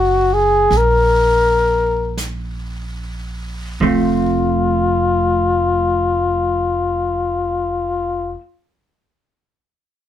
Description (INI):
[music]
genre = jazz ballad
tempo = 35-45 BPM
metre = 4/4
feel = swing 69% on 8ths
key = F major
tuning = A4 = 440 Hz
[part]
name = mellow flugelhorn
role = melody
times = 0.0-8.4 s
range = F4 to Bb4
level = -16 LUFS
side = left 3 dB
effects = none
[part]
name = vintage hollow-body jazz guitar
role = accompaniment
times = 0.0-8.4 s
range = F3 to Bb4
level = -20 LUFS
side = right 3 dB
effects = none
[part]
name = upright bass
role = bass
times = 0.0-8.3 s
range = F1 to Bb1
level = -22 LUFS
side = right 1 dB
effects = none
[part]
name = jazz brush drum kit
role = drums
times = 0.7-4.6 s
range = brushed snare drum, hi-hat, kick drum, snare drum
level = -32 LUFS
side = right 3 dB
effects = none
[sound]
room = light reverb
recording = none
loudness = -14 LUFS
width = side -11 dB against mid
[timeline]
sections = 0.0-3.8 A section; 3.8-10.1 B section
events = slowing down 0.0-3.8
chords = 0.0 Gb7; 3.8 F